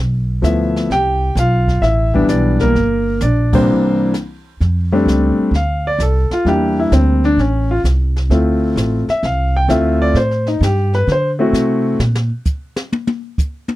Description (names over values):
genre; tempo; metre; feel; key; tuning
jazz piano trio; 130 BPM; 4/4; swing 68% on 8ths; C major, F major from 4.6 s; A4 = 439 Hz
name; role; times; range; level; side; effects
upright bass; bass; 0.0-12.3 s; G1 to D3; -16 LUFS; right 1 dB; none
clear concert grand piano; melody; 0.4-12.0 s; C2 to G5; -15 LUFS; left 1 dB; none
jazz brush drum kit; drums; 0.4-13.8 s; brushed snare drum, hi-hat, kick drum, ride cymbal, snare drum, toms; -22 LUFS; equal; none
room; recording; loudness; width
little or no reverb; dry, close 1970s-style studio recording; -13 LUFS; side -16 dB against mid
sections
0.0-4.6 A section; 4.6-13.8 B section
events
band accent 3.4; stop 3.7-4.6; grand piano solo 4.6-13.8; drum solo 12.0-13.8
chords
0.0 Dm69/B; 0.9 Cmaj9; 2.8 Gm; 3.7 C9; 4.6 F6; 6.5 Em7b5; 7.4 Am; 8.3 Dm7; 10.2 Gsus2; 11.1 D7; 12.0 N.C.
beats
0.43 | 0.89 1.36 1.82 2.29 | 2.75 3.21 3.68 4.14 | 4.60 5.07 5.53 5.99 | 6.46 6.92 7.38 7.84 | 8.30 8.77 9.23 9.69 | 10.15 10.61 11.08 11.54 | 12.00 12.46 12.92 13.38